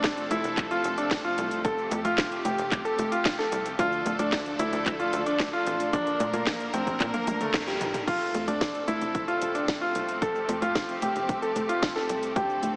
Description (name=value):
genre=italo disco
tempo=112 BPM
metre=4/4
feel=straight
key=F major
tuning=A4 = 439 Hz
part: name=clear grand piano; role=melody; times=0.0-12.7 s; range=G3 to A4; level=-30 LUFS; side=equal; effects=tape echo
part: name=clear symphonic string section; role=sustained chords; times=0.0-12.8 s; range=C3 to Bb4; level=-36 LUFS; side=equal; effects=none
part: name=tight sequencer bass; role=bass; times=0.0-12.8 s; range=D1 to Bb2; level=-39 LUFS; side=equal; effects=none
part: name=electronic kick drum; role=drums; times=0.0-12.5 s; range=none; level=-34 LUFS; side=equal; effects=none
part: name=house drum kit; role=drums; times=0.0-12.7 s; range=cabasa, congas, crash cymbal, handclaps, hi-hat, snare drum, toms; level=-34 LUFS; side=equal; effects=none
room=moderate lush hall reverb, RT60 2.8 s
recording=heavily compressed radio sound, small speaker sound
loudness=-28 LUFS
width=mono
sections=0.0-8.1 A section; 8.1-12.8 B section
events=drum fill 7.0-8.1; band accent 7.5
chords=0.0 F; 3.8 Dm; 5.9 Bb; 8.1 F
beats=0.04 0.57 1.11 | 1.65 2.18 2.72 3.25 | 3.79 4.33 4.86 5.40 | 5.93 6.47 7.00 7.54 | 8.07 8.61 9.15 9.68 | 10.22 10.75 11.29 11.82 | 12.36